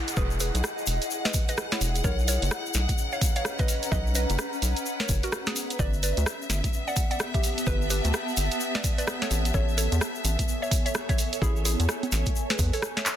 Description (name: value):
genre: UK garage, two-step garage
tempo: 128 BPM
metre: 4/4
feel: swing 61% on 16ths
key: unclear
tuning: A4 = 441 Hz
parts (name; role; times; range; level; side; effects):
- clear chamber violin section; sustained chords; 0.0-13.2 s; E5 to F#5; -36 LUFS; left 2 dB; sidechain pumping
- downlifter; sound effects; 0.0-2.0 s; none; -41 LUFS; equal; none
- granular cloud pad; texture; 0.0-13.2 s; B3 to A#5; -34 LUFS; equal; built-in reverb, sidechain pumping
- punchy analog drum machine; drums; 0.1-13.2 s; congas, handclaps, hi-hat, rim click, snare drum; -30 LUFS; right 2 dB; soft clipping on snare, studio reverb
- egg shaker; percussion; 0.1-13.2 s; none; -35 LUFS; left 6 dB; none
- hollow square pluck; melody; 0.2-13.1 s; B3 to F#5; -34 LUFS; right 1 dB; chorus, ping-pong delay
- rubbery square bass; bass; 0.2-12.7 s; E1 to E2; -26 LUFS; equal; none
- electronic kick drum; drums; 0.2-12.7 s; none; -26 LUFS; equal; overdrive, studio reverb
room: little or no reverb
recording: dense, heavily limited modern master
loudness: -24 LUFS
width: side -10 dB against mid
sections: 0.0-13.2 A section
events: none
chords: 0.0 Emaj9; 2.0 Bmaj9; 5.8 Gmaj9; 9.3 Amaj9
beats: | 0.17 0.64 1.11 1.57 | 2.04 2.51 2.98 3.45 | 3.92 4.39 4.86 5.33 | 5.79 6.26 6.73 7.20 | 7.67 8.14 8.61 9.07 | 9.54 10.01 10.48 10.95 | 11.42 11.89 12.36 12.82